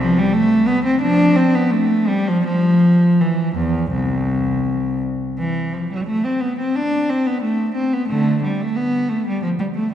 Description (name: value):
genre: classical, baroque-style suite movement for unaccompanied cello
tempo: 79-91 BPM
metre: 4/4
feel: rubato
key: C major, A minor from 5.4 s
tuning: A4 = 440 Hz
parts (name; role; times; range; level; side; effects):
- rich cello; solo; 0.0-9.9 s; C2 to D4; -16 LUFS; equal; none
room: wet church reverb, RT60 3.1 s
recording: heard from further back in the room, nothing above 10.7 kHz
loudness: -16 LUFS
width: side -10 dB against mid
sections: 0.0-5.4 A section; 5.4-9.9 A section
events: none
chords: none